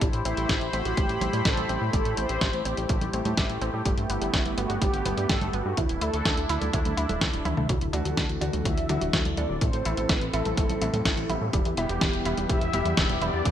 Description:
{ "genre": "italo disco", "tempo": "125 BPM", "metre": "4/4", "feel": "straight", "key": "A dorian", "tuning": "A4 = 440 Hz", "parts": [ { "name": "warm analog pad", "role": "sustained chords", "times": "0.0-13.5 s", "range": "D3 to B5", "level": "-32 LUFS", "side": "left 1 dB", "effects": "chorus, tremolo" }, { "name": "analog pluck", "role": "arpeggios", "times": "0.0-13.5 s", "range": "F#3 to E4", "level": "-34 LUFS", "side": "right 2 dB", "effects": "chorus, cassette tape, digital delay" }, { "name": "fat analog bass", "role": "bass", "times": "0.0-13.5 s", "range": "D1 to A2", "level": "-30 LUFS", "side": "equal", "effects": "tube saturation" }, { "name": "clean 12-bit digital drum machine", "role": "drums", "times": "0.0-13.5 s", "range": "congas, hi-hat, snare drum, toms", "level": "-29 LUFS", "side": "equal", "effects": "none" }, { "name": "electronic kick drum", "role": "drums", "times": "0.0-13.5 s", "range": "none", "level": "-28 LUFS", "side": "equal", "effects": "none" }, { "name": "mellow synth brass", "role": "melody", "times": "0.3-13.5 s", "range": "E4 to E5", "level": "-33 LUFS", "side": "equal", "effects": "chorus, digital delay" }, { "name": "clear concert grand piano", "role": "stabs", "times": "7.9-13.5 s", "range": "A2 to A4", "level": "-34 LUFS", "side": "equal", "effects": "digital delay" } ], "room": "light reverb, digital ambience", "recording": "bright 1980s-style digital production, faint mains hum", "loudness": "-23 LUFS", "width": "side -10 dB against mid", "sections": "0.0-7.7 A section; 7.7-13.5 B section", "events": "drum fill 7.5; filter sweep on analog synth pad 7.7-13.5", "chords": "0.0 Am7; 3.9 Gadd9; 5.8 Dsus2; 7.7 Dadd9; 9.6 Am; 11.5 Em", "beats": "| 0.01 0.49 0.97 1.46 | 1.94 2.42 2.90 3.38 | 3.85 4.33 4.82 5.29 | 5.78 6.25 6.74 7.21 | 7.70 8.18 8.65 9.13 | 9.62 10.10 10.57 11.05 | 11.54 12.02 12.49 12.97 | 13.46" }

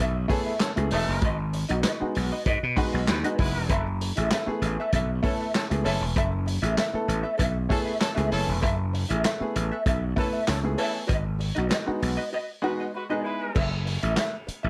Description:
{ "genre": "funk", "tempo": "97 BPM", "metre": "4/4", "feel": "straight", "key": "F# dorian", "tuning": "A4 = 440 Hz", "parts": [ { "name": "archtop guitar, miked and amplified", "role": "accompaniment", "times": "0.0-14.7 s", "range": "F#4 to E5", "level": "-34 LUFS", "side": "equal", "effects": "wah" }, { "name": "gritty slap bass", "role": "bass", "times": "0.0-14.7 s", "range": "E1 to B2", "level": "-29 LUFS", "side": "equal", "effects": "overdrive" }, { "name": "warm horn section", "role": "second line", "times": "0.3-13.6 s", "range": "E3 to B4", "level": "-34 LUFS", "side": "equal", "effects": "none" }, { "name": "warm upright piano", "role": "stabs", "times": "0.3-13.5 s", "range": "G#3 to B4", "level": "-32 LUFS", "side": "equal", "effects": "none" }, { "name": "vintage drum kit", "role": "drums", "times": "0.3-14.6 s", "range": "crash cymbal, handclaps, hi-hat, kick drum, snare drum", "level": "-31 LUFS", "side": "equal", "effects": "none" } ], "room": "light reverb", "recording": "none", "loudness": "-26 LUFS", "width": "mono", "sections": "0.0-13.6 A section; 13.6-14.7 B section", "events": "break 12.3-13.6", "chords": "0.0 F#m11; 1.2 G#m7; 3.7 F#m11; 11.1 G#m7; 13.6 F#m11", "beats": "0.61 | 1.23 1.84 2.46 3.08 | 3.70 4.31 4.93 5.55 | 6.16 6.78 7.40 8.01 | 8.63 9.25 9.86 10.48 | 11.09 11.71 12.33 12.94 | 13.56 14.17" }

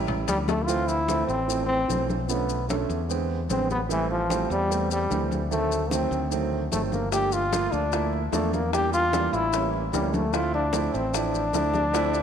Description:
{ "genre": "Afro-Cuban jazz", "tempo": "149 BPM", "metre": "4/4", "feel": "straight", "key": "D minor", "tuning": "A4 = 440 Hz", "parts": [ { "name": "warm grand piano", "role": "accompaniment", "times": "0.0-12.2 s", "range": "D3 to F4", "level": "-29 LUFS", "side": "right 8 dB", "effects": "none" }, { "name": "modern bright fingered electric bass", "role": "bass", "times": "0.0-12.2 s", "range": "G1 to E2", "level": "-30 LUFS", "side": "left 1 dB", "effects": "none" }, { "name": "congas", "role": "percussion", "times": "0.1-12.2 s", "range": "none", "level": "-34 LUFS", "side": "left 2 dB", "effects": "none" }, { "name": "cowbell and bongos", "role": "percussion", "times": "0.1-0.7, 7.1-12.2 s", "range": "none", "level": "-35 LUFS", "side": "left 13 dB", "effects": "none" }, { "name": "clear trombone", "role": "melody", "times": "0.3-12.2 s", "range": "E3 to G4", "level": "-26 LUFS", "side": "left 2 dB", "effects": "slapback echo" }, { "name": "maracas", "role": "percussion", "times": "0.3-12.2 s", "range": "none", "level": "-37 LUFS", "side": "left 15 dB", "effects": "none" } ], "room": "moderate echo chamber reverb, RT60 2.0 s, small room ambience", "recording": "1960s-style stereo with parts hard left and right", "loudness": "-23 LUFS", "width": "side -8 dB against mid", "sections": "0.7-12.2 A section", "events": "drum fill 0.5", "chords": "0.0 A7; 0.7 Dm9; 2.3 Bm7b5; 3.1 E7b13; 3.9 Am7; 5.5 D7b9; 7.1 Gm7; 8.7 Em7b5; 9.5 A7b9; 10.3 Dm9", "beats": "0.28 | 0.68 1.08 1.49 1.89 | 2.29 2.70 3.10 3.50 | 3.91 4.31 4.71 5.12 | 5.52 5.92 6.32 6.72 | 7.13 7.53 7.93 8.33 | 8.73 9.13 9.53 9.94 | 10.34 10.74 11.14 11.54 | 11.94" }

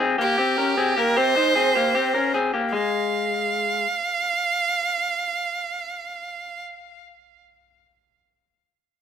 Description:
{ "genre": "indie pop", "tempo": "153 BPM", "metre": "4/4", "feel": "straight", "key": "unclear", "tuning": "A4 = 440 Hz", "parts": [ { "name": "electric guitar through a small old amp", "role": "arpeggios", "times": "0.0-3.9 s", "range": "Ab3 to C5", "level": "-22 LUFS", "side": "left 4 dB", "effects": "plate reverb" }, { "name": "clear violin", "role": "melody", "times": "0.2-6.6 s", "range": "G4 to F5", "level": "-23 LUFS", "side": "right 4 dB", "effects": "none" } ], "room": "moderate studio reverb, RT60 0.6 s", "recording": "rough home demo mix", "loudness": "-20 LUFS", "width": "side -8 dB against mid", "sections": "0.0-2.7 A section; 2.7-5.9 B section", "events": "none", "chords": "0.0 C5; 2.7 N.C.", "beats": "0.38 0.77 | 1.17 1.56 1.95 2.34 | 2.73 3.12 3.52 3.91 | 4.30 4.69 5.08 5.47" }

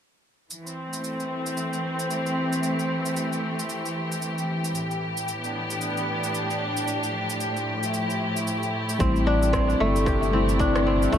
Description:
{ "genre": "organic downtempo", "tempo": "113 BPM", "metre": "4/4", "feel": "swing 60% on 16ths", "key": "A minor", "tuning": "A4 = 438 Hz", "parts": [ { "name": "clear symphonic string section", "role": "sustained chords", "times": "0.5-11.2 s", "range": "A2 to G4", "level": "-26 LUFS", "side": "equal", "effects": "sidechain pumping, shimmer reverb" }, { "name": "electronic shaker and rim click", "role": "drums", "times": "0.5-11.2 s", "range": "none", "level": "-34 LUFS", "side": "right 2 dB", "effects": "overdrive, tape echo" }, { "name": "muted felt-like synth keys", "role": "accompaniment", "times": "9.0-11.2 s", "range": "G3 to E4", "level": "-26 LUFS", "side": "left 2 dB", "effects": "chorus, sidechain pumping, tape echo" }, { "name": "kora", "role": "arpeggios", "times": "9.0-11.2 s", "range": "A3 to G4", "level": "-24 LUFS", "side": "left 1 dB", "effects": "dub echo, shimmer reverb" }, { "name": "round analog bass", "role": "bass", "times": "9.0-11.2 s", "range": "G1 to A1", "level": "-24 LUFS", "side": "equal", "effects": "sidechain pumping" }, { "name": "electronic kick drum", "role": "drums", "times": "9.0-11.2 s", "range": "none", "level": "-26 LUFS", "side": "equal", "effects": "overdrive" } ], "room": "wet spring reverb, RT60 2.1 s", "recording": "echo-heavy mix", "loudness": "-23 LUFS", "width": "side -9 dB against mid", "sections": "0.5-11.2 A section", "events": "none", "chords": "0.5 Am7; 4.8 Em7/A; 6.9 Fmaj9/A; 9.0 Am7", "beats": "| 0.51 1.04 1.57 2.10 | 2.63 3.16 3.69 4.23 | 4.76 5.29 5.82 6.35 | 6.88 7.41 7.94 8.47 | 9.01 9.54 10.07 10.60 | 11.13" }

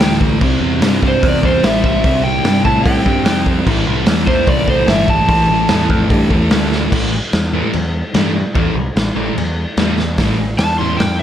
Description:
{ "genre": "garage rock duo or trio", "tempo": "148 BPM", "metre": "4/4", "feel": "straight", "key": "A minor", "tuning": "A4 = 440 Hz", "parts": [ { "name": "overdriven slide guitar", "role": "melody", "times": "0.0-6.7, 10.6-11.2 s", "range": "C5 to C6", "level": "-17 LUFS", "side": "equal", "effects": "none" }, { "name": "thick fuzz guitar", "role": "riff", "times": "0.0-11.0 s", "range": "A2 to C4", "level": "-17 LUFS", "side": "equal", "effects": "distortion" }, { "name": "growling picked electric bass", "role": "bass", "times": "0.0-11.2 s", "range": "G1 to A2", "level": "-19 LUFS", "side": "equal", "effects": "overdrive" }, { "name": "raw garage drum kit", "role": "drums", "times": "0.0-11.1 s", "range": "crash cymbal, hi-hat, kick drum, snare drum", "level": "-16 LUFS", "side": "equal", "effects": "none" } ], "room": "light reverb, small room ambience", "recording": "none", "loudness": "-12 LUFS", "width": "side -10 dB against mid", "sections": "0.0-6.9 A section; 6.9-10.2 B section; 10.2-11.2 C section", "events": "drum fill 6.7, 10.0; electric slide guitar solo 10.2-11.2", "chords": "0.4 C; 3.7 Am; 6.9 A5", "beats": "0.01 | 0.42 0.82 1.23 1.64 | 2.04 2.45 2.86 3.26 | 3.67 4.08 4.48 4.89 | 5.29 5.70 6.11 6.52 | 6.92 7.33 7.74 8.15 | 8.55 8.96 9.37 9.78 | 10.19 10.59 11.00" }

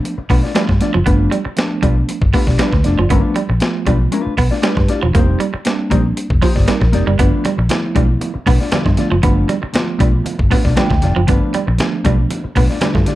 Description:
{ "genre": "funk", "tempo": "117 BPM", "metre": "4/4", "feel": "straight", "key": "G mixolydian", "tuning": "A4 = 440 Hz", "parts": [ { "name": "mellow electric guitar", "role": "accompaniment", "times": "0.0-13.2 s", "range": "A3 to D5", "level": "-22 LUFS", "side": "left 5 dB", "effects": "none" }, { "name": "mellow tine electric piano", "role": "stabs", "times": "0.0-13.2 s", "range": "F3 to G5", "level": "-22 LUFS", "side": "right 2 dB", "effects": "medium stereo tremolo" }, { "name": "breakbeat sampler-style drum kit", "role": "drums", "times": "0.1-13.2 s", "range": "hi-hat, kick drum, snare drum", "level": "-17 LUFS", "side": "equal", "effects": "none" }, { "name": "vintage muted fingered electric bass", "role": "bass", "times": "0.2-13.0 s", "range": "E1 to G2", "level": "-16 LUFS", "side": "equal", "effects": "none" }, { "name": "electric guitar at the edge of break-up", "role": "riff", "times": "0.3-13.0 s", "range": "F3 to B3", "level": "-21 LUFS", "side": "right 5 dB", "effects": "none" }, { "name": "congas", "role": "percussion", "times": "7.2-13.1 s", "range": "none", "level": "-25 LUFS", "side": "right 3 dB", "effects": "none" } ], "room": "digital ambience", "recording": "dark, warm production", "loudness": "-13 LUFS", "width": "side -15 dB against mid", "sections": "0.0-13.2 A section", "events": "tine electric piano fill 2.1-3.1, 6.2-7.2, 10.5-11.3", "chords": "0.0 G9; 5.1 F9sus4; 7.2 G9", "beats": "0.04 0.55 | 1.06 1.57 2.08 2.59 | 3.10 3.61 4.12 4.63 | 5.14 5.66 6.17 6.68 | 7.19 7.70 8.21 8.72 | 9.24 9.75 10.26 10.77 | 11.28 11.79 12.30 12.81" }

